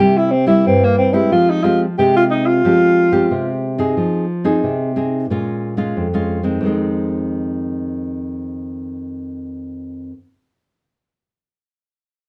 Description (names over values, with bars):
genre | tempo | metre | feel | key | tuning
samba | 91 BPM | 4/4 | straight | F minor | A4 = 441 Hz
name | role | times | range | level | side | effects
breathy alto saxophone | melody | 0.0-3.6 s | Bb3 to G4 | -16 LUFS | equal | none
nylon-string guitar | accompaniment | 0.0-10.2 s | F2 to Ab4 | -20 LUFS | equal | none
room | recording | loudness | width
moderate studio ambience, RT60 0.5 s | dark, warm production | -17 LUFS | mono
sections
0.0-4.0 A section; 4.0-6.6 B section; 6.6-9.3 C section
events
none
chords
0.0 C7; 1.3 Fmadd9; 4.0 Fm7; 5.3 Bbm7; 6.6 Fm7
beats
0.00 0.67 | 1.33 1.99 2.65 3.31 | 3.97 4.64 5.30 5.96 | 6.62 7.29 7.95 8.61